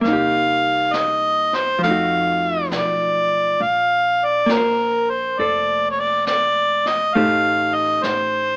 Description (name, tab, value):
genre	jazz ballad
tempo	68 BPM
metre	4/4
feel	swing 69% on 8ths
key	Bb major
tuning	A4 = 440 Hz
part	clear harmonica	melody	0.0-8.6 s	Bb4 to F5	-20 LUFS	equal	none
part	archtop guitar, miked and amplified	accompaniment	0.0-8.6 s	F3 to C5	-26 LUFS	equal	none
part	upright bass	bass	0.0-8.6 s	F1 to F2	-38 LUFS	equal	none
part	jazz brush drum kit	drums	0.0-8.6 s	brushed snare drum, hi-hat, snare drum	-32 LUFS	equal	none
room	light reverb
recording	AM radio sound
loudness	-19 LUFS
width	mono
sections	0.0-3.6 A section; 3.6-8.6 A section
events	none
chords	0.0 Cm7; 1.8 F7b9; 3.6 Bbsus2; 7.1 Am7b5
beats	| 0.04 0.93 1.82 2.71 | 3.60 4.49 5.38 6.26 | 7.15 8.03